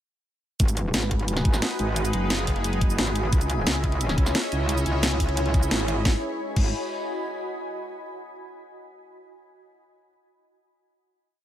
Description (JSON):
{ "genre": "dark technical drum and bass", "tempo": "176 BPM", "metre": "4/4", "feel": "straight", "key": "G# minor", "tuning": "A4 = 440 Hz", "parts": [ { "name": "sweeping resonant pad", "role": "sustained chords", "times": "0.6-6.2 s", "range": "G#3 to E5", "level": "-34 LUFS", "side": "equal", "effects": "chorus, sidechain pumping" }, { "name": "metallic wobble bass", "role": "bass", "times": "0.6-6.7 s", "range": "F#1 to C#2", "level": "-26 LUFS", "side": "equal", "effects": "distortion, chorus, overdrive" }, { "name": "drum and bass drum kit", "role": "drums", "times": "0.6-6.6 s", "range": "crash cymbal, hi-hat, shaker, snare drum", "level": "-27 LUFS", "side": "equal", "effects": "none" }, { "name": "electronic kick drum", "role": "drums", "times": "0.6-6.6 s", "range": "none", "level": "-23 LUFS", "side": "equal", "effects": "none" }, { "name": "granular cloud pad", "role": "texture", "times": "1.3-7.4 s", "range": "E4 to D#6", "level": "-31 LUFS", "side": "equal", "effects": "built-in reverb, sidechain pumping" } ], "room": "light reverb", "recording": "none", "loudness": "-22 LUFS", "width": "side -12 dB against mid", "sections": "0.6-6.1 drop; 6.1-7.4 final chord", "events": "drop 0.6-6.1; band accent 5.7", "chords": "0.6 G#m7; 3.3 C#m7; 6.1 G#m7" }